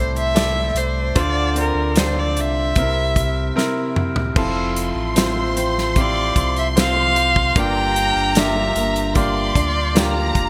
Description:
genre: pop ballad.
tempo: 75 BPM.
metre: 4/4.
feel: straight.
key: F major.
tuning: A4 = 438 Hz.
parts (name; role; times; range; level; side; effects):
rich violin; melody; 0.0-10.4 s; Bb4 to G5; -24 LUFS; equal; none.
bright concert grand piano; accompaniment; 0.0-10.5 s; G2 to D5; -26 LUFS; equal; none.
flamenco guitar; arpeggios; 0.0-10.5 s; G2 to A4; -31 LUFS; equal; none.
sub bass with octave; bass; 0.0-10.5 s; E1 to D2; -26 LUFS; equal; none.
natural country drum kit; drums; 0.2-10.5 s; crash cymbal, hi-hat, kick drum, snare drum, toms; -23 LUFS; equal; gated reverb.
warm studio violin section; second line; 4.4-10.5 s; Bb5 to C6; -28 LUFS; equal; none.
room: light reverb, studio reverb.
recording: bright 1980s-style digital production.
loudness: -19 LUFS.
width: mono.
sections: 0.0-4.4 A section; 4.4-10.5 B section.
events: drum fill 3.6-4.4.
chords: 0.0 Am; 1.2 Dm7; 2.8 C7; 4.4 Fmaj7; 7.6 Gm7.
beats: 0.36 | 1.16 1.96 2.76 3.56 | 4.36 5.16 5.96 6.76 | 7.56 8.36 9.16 9.96.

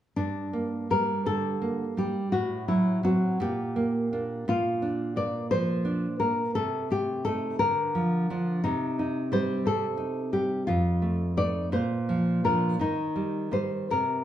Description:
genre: romantic duo for nylon-string guitar and classical guitar.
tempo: 48-61 BPM (dotted quarters).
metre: 6/8.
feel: rubato.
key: G minor.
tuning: A4 = 440 Hz.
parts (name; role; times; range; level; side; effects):
nylon-string guitar; melody; 0.2-14.2 s; D4 to D5; -28 LUFS; left 2 dB; none.
nylon-string guitar; accompaniment; 0.2-14.2 s; F2 to Eb4; -28 LUFS; right 2 dB; none.
room: wet large studio reverb, RT60 0.8 s.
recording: band playing live in one room.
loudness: -25 LUFS.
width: side -11 dB against mid.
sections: 0.2-14.2 A section.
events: none.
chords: 0.2 Gm; 2.3 F#dim/A; 3.4 Gm/Bb; 4.5 Bb; 6.5 Adim/C; 7.6 Bb/D; 8.6 Cm; 10.7 F7; 11.7 Bb; 12.8 Eb.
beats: | 0.17 1.27 | 2.34 3.42 | 4.49 5.51 | 6.55 7.59 | 8.64 9.65 | 10.68 11.73 | 12.80 13.92.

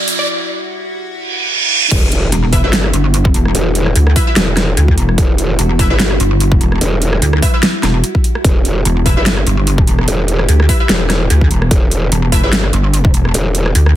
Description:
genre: heavy wobble dubstep.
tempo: 147 BPM.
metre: 4/4.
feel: swing 55% on 16ths, half-time.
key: E minor.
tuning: A4 = 440 Hz.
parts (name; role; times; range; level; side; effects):
evolving wavetable pad; sustained chords; 0.0-14.0 s; G3 to G4; -23 LUFS; equal; phaser, built-in reverb, sidechain pumping.
riser, reverse cymbal and sub drop; sound effects; 0.0-3.5 s; none; -16 LUFS; right 3 dB; none.
big-room dance drum kit; drums; 0.1-13.9 s; crash cymbal, hi-hat, rim click, snare drum; -17 LUFS; equal; overdrive, high-pass filter on hats, high-pass filter on snare, high-pass filter on cymbals.
growl bass; bass; 1.9-13.7 s; E1 to G1; -15 LUFS; equal; chorus, overdrive.
electronic kick drum; drums; 1.9-13.1 s; none; -13 LUFS; equal; overdrive.
pulsing pluck wobble bass; bass; 2.3-13.9 s; E1 to D2; -12 LUFS; equal; chorus, overdrive.
orchestra-hit-like synth stab; stabs; 2.5-12.5 s; E4 to E5; -22 LUFS; left 1 dB; built-in reverb, tape echo.
room: little or no reverb.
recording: high-pass filter.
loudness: -10 LUFS.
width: side -12 dB against mid.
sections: 0.0-1.9 A section; 1.9-14.0 B section.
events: build-up 0.0-1.9; riser 0.0; filter sweep on ambient pad 0.0-1.9; break 0.3-1.9; reverse cymbal 1.3-1.9; drop 1.9-14.0; impact 1.9-3.5.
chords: 0.0 Emadd9.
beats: | 0.28 0.69 1.10 1.51 | 1.91 2.32 2.73 3.14 | 3.55 3.96 4.36 4.77 | 5.18 5.59 6.00 6.40 | 6.81 7.22 7.63 8.04 | 8.45 8.85 9.26 9.67 | 10.08 10.49 10.89 11.30 | 11.71 12.12 12.53 12.94 | 13.34 13.75.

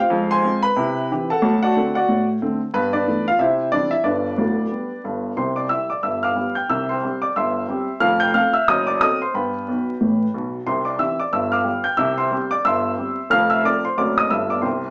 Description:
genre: jazz, stride piano.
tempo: 182 BPM.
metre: 4/4.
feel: swing 60% on 8ths.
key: C major.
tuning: A4 = 440 Hz.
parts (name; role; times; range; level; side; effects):
warm upright piano; solo; 0.0-14.9 s; D1 to G6; -20 LUFS; equal; none.
room: wet studio reverb, RT60 0.6 s.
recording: band playing live in one room, vinyl crackle, small speaker sound.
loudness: -20 LUFS.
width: mono.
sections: 0.0-5.4 A section; 5.4-14.9 B section.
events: upright piano fill 9.7-10.7.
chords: 0.1 Fm; 0.8 C; 1.4 D7; 2.7 G13; 3.4 C; 4.1 G; 5.4 C; 6.0 G7; 6.7 C; 8.0 F; 8.7 F#dim7; 9.3 G; 10.7 C; 11.3 G7; 12.0 C; 13.3 F; 14.0 F#dim7; 14.3 G7.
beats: | 0.12 0.44 0.77 1.10 | 1.43 1.76 2.09 2.42 | 2.75 3.07 3.40 3.73 | 4.06 4.39 4.72 5.05 | 5.38 5.71 6.04 6.37 | 6.70 7.03 7.36 7.69 | 8.02 8.35 8.68 9.01 | 9.34 9.67 10.00 10.33 | 10.66 10.99 11.32 11.66 | 11.99 12.32 12.65 12.98 | 13.31 13.64 13.97 14.30 | 14.63.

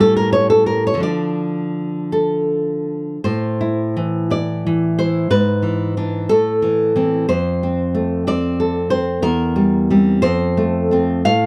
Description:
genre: romantic piece for solo classical guitar.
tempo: 52-62 BPM (dotted quarters).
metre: 6/8.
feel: rubato.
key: D minor, A minor from 3.3 s.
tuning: A4 = 440 Hz.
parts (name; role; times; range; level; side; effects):
nylon-string guitar; solo; 0.0-11.5 s; E2 to F5; -18 LUFS; equal; none.
room: little or no reverb.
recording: dry, close 1970s-style studio recording.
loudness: -18 LUFS.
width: mono.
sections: 0.0-3.3 A section; 3.3-11.5 B section.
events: none.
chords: 0.0 A7; 1.0 Dm; 3.3 Am; 5.3 E7/G#; 6.3 Am; 7.3 F; 9.2 C7/E; 10.2 F.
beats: 0.00 | 1.05 2.15 | 3.27 4.31 | 5.31 6.30 | 7.29 8.26 | 9.23 10.22 | 11.25.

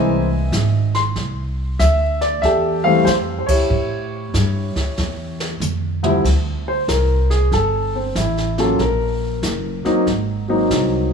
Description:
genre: jazz piano trio.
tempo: 94 BPM.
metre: 4/4.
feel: swing 66% on 8ths.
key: D minor.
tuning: A4 = 441 Hz.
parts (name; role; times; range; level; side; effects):
warm grand piano; melody; 0.0-11.1 s; D2 to C6; -19 LUFS; left 1 dB; none.
upright bass; bass; 0.0-11.1 s; Gb1 to A2; -20 LUFS; right 1 dB; none.
jazz brush drum kit; drums; 0.5-11.1 s; brushed snare drum, crash cymbal, hi-hat, kick drum, snare drum, toms; -26 LUFS; right 1 dB; none.
room: light reverb.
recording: small room reverb.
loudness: -16 LUFS.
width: side -6 dB against mid.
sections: 0.0-6.2 A section; 6.2-11.1 B section.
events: band accent 3.4-3.7; drum fill 5.0-6.2; grand piano solo 6.2-11.1.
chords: 0.0 C7alt; 1.2 Fmaj9; 3.7 A7b13; 6.2 D7(no3); 8.8 Ebm (rootless); 10.1 G#9.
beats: 0.53 | 1.16 1.80 2.43 3.07 | 3.70 4.34 4.98 5.61 | 6.25 6.89 7.52 8.16 | 8.80 9.44 10.07 10.71.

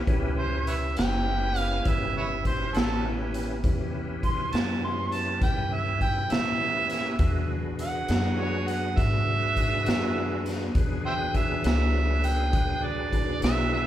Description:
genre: slow blues.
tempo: 67 BPM (dotted quarters).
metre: 12/8.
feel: straight.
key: A mixolydian.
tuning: A4 = 440 Hz.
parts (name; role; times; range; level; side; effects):
bright tonewheel organ; sustained chords; 0.0-13.9 s; F#3 to B4; -32 LUFS; equal; slow rotary speaker, chorus vibrato.
upright bass; bass; 0.0-13.9 s; F#1 to A2; -29 LUFS; equal; none.
raw garage drum kit; drums; 0.1-13.6 s; hi-hat, kick drum, snare drum; -28 LUFS; equal; none.
warm harmonica; second line; 0.4-13.9 s; A4 to C6; -29 LUFS; right 3 dB; overdrive.
room: moderate large studio reverb, RT60 1.1 s.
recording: band playing live in one room.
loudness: -24 LUFS.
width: side -12 dB against mid.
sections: 0.0-13.9 A section.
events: harmonica solo 0.0-13.9.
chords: 0.0 A7; 7.2 E7.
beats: | 0.08 0.97 1.86 2.75 | 3.64 4.53 5.42 6.31 | 7.20 8.09 8.98 9.87 | 10.76 11.65 12.54 13.43.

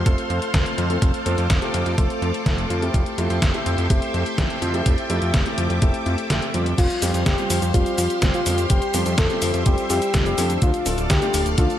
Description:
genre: italo disco.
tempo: 125 BPM.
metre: 4/4.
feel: straight.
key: unclear.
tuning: A4 = 444 Hz.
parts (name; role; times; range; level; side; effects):
string machine, full ensemble; sustained chords; 0.0-11.8 s; G4 to D6; -27 LUFS; equal; ensemble chorus.
dark baby grand piano; stabs; 0.0-11.8 s; D3 to A4; -28 LUFS; right 1 dB; ping-pong delay.
fat analog bass; bass; 0.0-11.7 s; D1 to F2; -24 LUFS; equal; none.
detuned 8-bit digital drum machine; drums; 0.1-11.8 s; cabasa, crash cymbal, hi-hat, snare drum; -26 LUFS; equal; none.
electronic kick drum; drums; 0.1-11.7 s; none; -20 LUFS; equal; none.
soft octave-layered synth lead; melody; 6.8-11.7 s; F4 to A4; -24 LUFS; left 2 dB; chorus, cassette tape, ping-pong delay.
room: light reverb.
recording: none.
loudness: -18 LUFS.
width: side -11 dB against mid.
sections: 0.0-6.8 A section; 6.8-11.8 B section.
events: kick drops out 6.3-6.8.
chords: 0.0 C6/F; 10.6 Dm.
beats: 0.06 0.54 | 1.02 1.50 1.98 2.46 | 2.94 3.42 3.90 4.38 | 4.86 5.34 5.82 6.30 | 6.78 7.26 7.74 8.22 | 8.70 9.18 9.66 10.14 | 10.62 11.10 11.58.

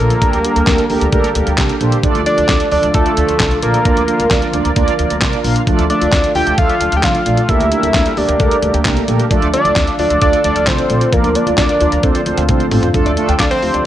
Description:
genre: synth-pop.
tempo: 132 BPM.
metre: 4/4.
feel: straight.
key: D minor.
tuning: A4 = 440 Hz.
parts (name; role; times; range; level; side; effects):
fat analog lead; melody; 0.0-13.8 s; A4 to G5; -16 LUFS; equal; chorus.
mellow synth brass; accompaniment; 0.0-13.8 s; F3 to F5; -18 LUFS; right 3 dB; chorus.
sweeping resonant pad; sustained chords; 0.0-13.9 s; D3 to Bb4; -24 LUFS; left 1 dB; chorus, tremolo.
upright bass; bass; 0.0-13.8 s; A1 to D2; -19 LUFS; equal; none.
clean 12-bit digital drum machine; drums; 0.1-13.8 s; handclaps, hi-hat, kick drum, snare drum, toms; -17 LUFS; equal; none.
soft round pluck; arpeggios; 5.7-13.8 s; F3 to F6; -23 LUFS; left 6 dB; chorus.
warm concert grand piano; second line; 13.1-13.9 s; D5 to G5; -23 LUFS; left 3 dB; none.
room: light reverb.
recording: none.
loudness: -11 LUFS.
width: side -12 dB against mid.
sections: 0.0-12.9 A section.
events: drum fill 12.5-12.9.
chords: 0.2 Gmadd9/D; 2.0 Dm; 3.9 Bb/D; 5.7 Dm; 7.5 Gmadd9/D; 9.3 Dm; 11.1 Bb/D; 12.0 Dm7; 12.9 Dm.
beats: | 0.22 0.67 1.13 1.58 | 2.04 2.49 2.94 3.40 | 3.85 4.31 4.76 5.22 | 5.67 6.13 6.58 7.04 | 7.49 7.94 8.40 8.85 | 9.31 9.76 10.22 10.67 | 11.13 11.58 12.04 12.49 | 12.94 13.40 13.85.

